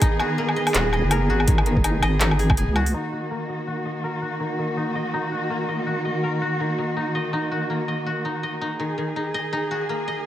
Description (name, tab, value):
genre	half-time drum and bass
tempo	164 BPM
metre	4/4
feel	swing 58% on 16ths, half-time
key	Eb minor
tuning	A4 = 438 Hz
part	dark symphonic cello section	sustained chords	0.0-10.3 s	Eb3 to Ab4	-26 LUFS	right 1 dB	sidechain pumping
part	koto	arpeggios	0.0-10.3 s	Eb3 to Eb5	-27 LUFS	left 2 dB	low-pass filter, dub echo
part	drum and bass drum kit	drums	0.0-2.9 s	handclaps, hi-hat, woodblock	-24 LUFS	left 1 dB	none
part	electronic kick drum	drums	0.0-2.6 s	none	-20 LUFS	equal	overdrive
part	deep soft wobble bass	bass	0.7-2.9 s	Eb1 to Db2	-21 LUFS	equal	chorus
room	moderate echo chamber reverb, RT60 2.1 s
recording	none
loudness	-21 LUFS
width	side -12 dB against mid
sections	0.0-2.9 A section; 2.9-10.3 B section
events	drop 0.0-2.9; filter sweep on koto 2.9-10.3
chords	0.0 Abm; 2.9 Ebm